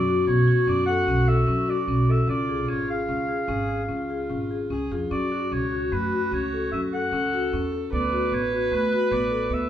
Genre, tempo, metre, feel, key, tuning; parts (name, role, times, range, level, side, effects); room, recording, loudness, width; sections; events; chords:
contemporary instrumental, chamber music in an uneven meter; 150 BPM; 7/4; straight; B dorian; A4 = 440 Hz
clear oboe; melody; 0.0-9.7 s; B4 to F#5; -28 LUFS; right 1 dB
dark viola; second line; 0.0-9.7 s; E#4 to B4; -28 LUFS; equal
upright bass; bass; 0.0-9.7 s; G#1 to F#2; -27 LUFS; right 1 dB
marimba with medium hard mallets; arpeggios; 0.1-9.6 s; A3 to A4; -27 LUFS; left 4 dB
wet studio reverb, RT60 0.8 s; heard from further back in the room; -22 LUFS; side -10 dB against mid
0.0-9.7 A section
0.0 Bmadd9; 2.3 C#; 5.1 F#m; 7.9 D6